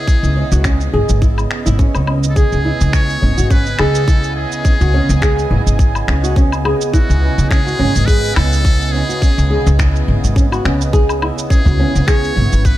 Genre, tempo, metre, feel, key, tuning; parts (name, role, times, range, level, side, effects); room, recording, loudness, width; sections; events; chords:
organic downtempo; 105 BPM; 4/4; swing 55% on 16ths; C# minor; A4 = 440 Hz
trumpet with metal mute; melody; 0.0-12.8 s; F#4 to C#5; -23 LUFS; equal; digital delay
warm analog pad; sustained chords; 0.0-12.8 s; C#3 to G#5; -24 LUFS; right 1 dB; chorus, tremolo, sidechain pumping
flamenco guitar; arpeggios; 0.0-12.8 s; C#4 to C#5; -21 LUFS; right 1 dB; tape echo
electronic cabasa, finger snaps and woodblock; drums; 0.1-12.8 s; -24 LUFS; left 1 dB
electronic kick drum; drums; 0.1-12.8 s; -13 LUFS; equal
upright bass; bass; 0.2-12.8 s; G#1 to C#2; -15 LUFS; equal; sidechain pumping
udu; percussion; 11.7-11.8 s; -19 LUFS; right 1 dB
small room ambience; -12 LUFS; side -14 dB against mid
0.0-12.8 A section
0.0 C#m7